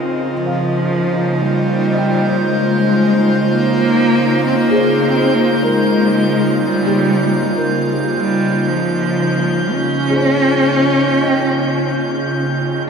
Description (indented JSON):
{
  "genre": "ambient",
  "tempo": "57 BPM",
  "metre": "3/4",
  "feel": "straight",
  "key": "unclear",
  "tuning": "A4 = 441 Hz",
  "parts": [
    { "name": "airy breathy pad", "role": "sustained chords", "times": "0.0-12.9 s", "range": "Db3 to Eb5", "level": "-18 LUFS", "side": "right 2 dB", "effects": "chorus" },
    { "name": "felt-muted upright piano", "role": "arpeggios", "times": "0.0-12.9 s", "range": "G4 to G5", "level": "-24 LUFS", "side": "left 2 dB", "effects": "tape echo" },
    { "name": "bowed-like drone", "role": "drone", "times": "0.0-12.9 s", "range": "Db3 to Eb4", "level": "-29 LUFS", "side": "equal", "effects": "none" },
    { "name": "drifting glass-harmonics texture", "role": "texture", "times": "1.0-12.9 s", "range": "G6", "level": "-25 LUFS", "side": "right 2 dB", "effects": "chorus, built-in reverb" },
    { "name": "warm cello", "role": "melody", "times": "0.4-12.4 s", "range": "F3 to Db4", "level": "-16 LUFS", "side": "equal", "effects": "tape echo" }
  ],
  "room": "wet cathedral reverb, RT60 5.7 s",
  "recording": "none",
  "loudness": "-13 LUFS",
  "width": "side -6 dB against mid",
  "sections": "0.0-12.9 A section",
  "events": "none",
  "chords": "0.3 Bbm11/Db"
}